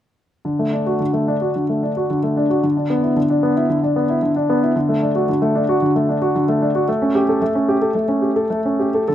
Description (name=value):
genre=classical-period piano sonatina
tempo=112 BPM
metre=4/4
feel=rubato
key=D major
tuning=A4 = 440 Hz
part: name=warm baby grand piano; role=solo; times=0.4-9.1 s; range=D3 to A4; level=-16 LUFS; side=equal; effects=none
room=moderate recital hall reverb, RT60 1.5 s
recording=close, detailed microphones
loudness=-16 LUFS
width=side -11 dB against mid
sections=0.4-9.1 A section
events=none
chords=0.4 D; 2.6 E5/D; 4.8 D; 6.9 A7